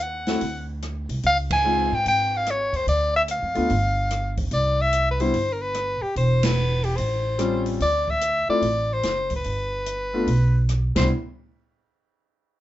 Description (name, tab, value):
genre	jazz, small-group swing and bop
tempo	146 BPM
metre	4/4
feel	swing 65% on 8ths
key	C major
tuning	A4 = 441 Hz
part	clear soprano saxophone	melody	0.0-11.1 s	G4 to Ab5	-23 LUFS	left 1 dB	none
part	upright bass	bass	0.0-11.1 s	E1 to Ab2	-25 LUFS	right 1 dB	none
part	warm grand piano	accompaniment	0.3-11.1 s	G3 to Gb4	-25 LUFS	left 2 dB	none
part	open jazz drum kit	drums	0.3-11.0 s	crash cymbal, hi-hat, kick drum, ride cymbal, rim click, snare drum	-31 LUFS	right 1 dB	none
room	moderate studio ambience, RT60 0.5 s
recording	dark, warm production, nothing above 7.8 kHz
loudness	-20 LUFS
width	side -14 dB against mid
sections	0.0-7.8 A section; 7.8-11.1 B section; 11.1-12.6 C section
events	band accent 1.4, 6.4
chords	0.4 Csus2; 1.2 Dbmaj9; 2.9 Dm; 3.7 Fsus2/G; 4.5 Cmaj7(no3); 6.2 E5; 7.0 A7alt; 7.8 D7(no3); 9.5 G; 10.9 Cmaj9; 11.1 N.C.